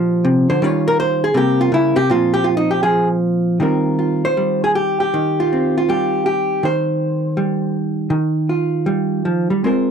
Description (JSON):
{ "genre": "solo jazz", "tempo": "160 BPM", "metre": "4/4", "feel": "swing 66% on 8ths, rubato", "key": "Eb mixolydian", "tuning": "A4 = 440 Hz", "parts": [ { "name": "hollow-body jazz guitar", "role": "solo", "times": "0.0-9.9 s", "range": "Bb2 to Db5", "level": "-15 LUFS", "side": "right 1 dB", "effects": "none" } ], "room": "light reverb", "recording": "dry, close 1970s-style studio recording", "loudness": "-15 LUFS", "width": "side -7 dB against mid", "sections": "0.0-3.6 A section; 3.6-9.9 B section", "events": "hollow-body jazz guitar solo 0.0-3.6", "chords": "0.0 Bb69; 0.6 Eb9; 1.3 C5; 2.1 Bbsus2; 3.6 Eb69" }